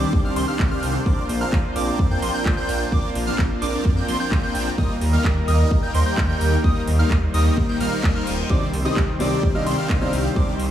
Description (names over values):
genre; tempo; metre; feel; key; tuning
EDM, festival progressive house; 129 BPM; 4/4; straight; C minor; A4 = 441 Hz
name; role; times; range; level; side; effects
supersaw pad; sustained chords; 0.0-10.7 s; Eb3 to C5; -27 LUFS; equal; wide subtle chorus, sidechain pumping
plucky unison lead; arpeggios; 0.0-10.5 s; C6 to G6; -29 LUFS; right 1 dB; sidechain pumping, diffuse ambient delay
supersaw chords; riff; 0.0-10.5 s; Eb3 to G5; -26 LUFS; equal; phaser, sidechain pumping, diffuse ambient delay
wide detuned saw bass; bass; 0.0-10.7 s; Eb1 to F2; -23 LUFS; equal; chorus, sidechain pumping
electronic kick drum; drums; 0.1-10.5 s; none; -20 LUFS; equal; none
house drum kit; drums; 0.4-10.7 s; handclaps, hi-hat; -32 LUFS; right 1 dB; none
reverse cymbal; sound effects; 7.9-8.5 s; none; -36 LUFS; left 6 dB; none
dark baby grand piano; accompaniment; 8.5-10.5 s; C3 to Eb5; -26 LUFS; left 1 dB; vintage 12-bit sampler grit, sidechain pumping, diffuse ambient delay
room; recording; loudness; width
light reverb; none; -18 LUFS; side -11 dB against mid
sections
0.0-10.7 A section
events
reverse cymbal 7.9-8.5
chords
0.0 Cmadd9; 1.1 Bbadd9; 4.8 Eb; 8.5 Cmadd9